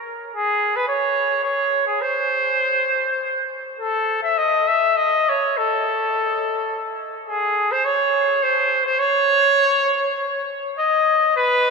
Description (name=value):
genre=mexican folk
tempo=104 BPM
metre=3/4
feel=swing 54% on 8ths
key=C# minor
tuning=A4 = 440 Hz
part: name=warm trumpet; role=solo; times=0.0-11.7 s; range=G#4 to E5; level=-17 LUFS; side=equal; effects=none
room=wet cathedral reverb, RT60 6.7 s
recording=recorded in a church or concert hall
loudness=-17 LUFS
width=side -4 dB against mid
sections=0.0-10.8 A section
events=none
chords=none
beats=| 0.34 0.90 1.47 | 2.05 2.62 3.20 | 3.79 4.37 4.96 | 5.54 6.12 6.70 | 7.28 7.85 8.43 | 9.00 9.58 10.17 | 10.76 11.35